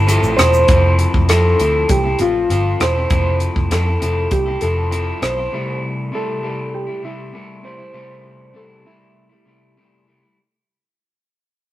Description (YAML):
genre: indie pop, bedroom pop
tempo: 99 BPM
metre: 4/4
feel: straight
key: F major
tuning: A4 = 440 Hz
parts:
  - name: soft electric-piano-like synth keys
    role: melody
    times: 0.0-10.0 s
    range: E4 to C5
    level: -19 LUFS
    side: equal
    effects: chorus
  - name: electric guitar at the edge of break-up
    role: accompaniment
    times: 0.0-10.4 s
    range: C3 to A4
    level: -23 LUFS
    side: left 2 dB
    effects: warbly pitch drift
  - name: vintage muted picked electric bass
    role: bass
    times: 0.0-5.5 s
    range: E1 to F2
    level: -18 LUFS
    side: equal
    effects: none
  - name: compact cocktail drum kit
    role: drums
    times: 0.1-5.4 s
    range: hi-hat, kick drum, rim click, shaker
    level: -19 LUFS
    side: equal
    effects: none
room: moderate stone room reverb, RT60 1.3 s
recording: rough rehearsal-room recording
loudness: -14 LUFS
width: side -14 dB against mid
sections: 0.7-10.4 A section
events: fade-out 0.7-10.4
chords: 0.0 Fmaj7; 5.5 C6